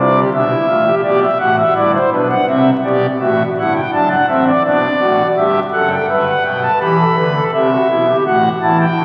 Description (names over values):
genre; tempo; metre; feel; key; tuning
classical, baroque-style 3-part fugue for pipe organ; 83 BPM; 4/4; straight; unclear; A4 = 441 Hz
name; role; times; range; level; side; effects
pipe organ, foundations; solo; 0.0-9.0 s; F#1 to B5; -14 LUFS; equal; none
room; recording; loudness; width
wet church reverb, RT60 3.6 s; very old 78 rpm record, vinyl crackle; -14 LUFS; mono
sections
0.0-6.8 A section; 6.8-9.0 B section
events
none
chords
0.0 C; 1.0 G; 3.9 D7/F#; 5.4 G; 6.8 Em; 8.3 F#m7/A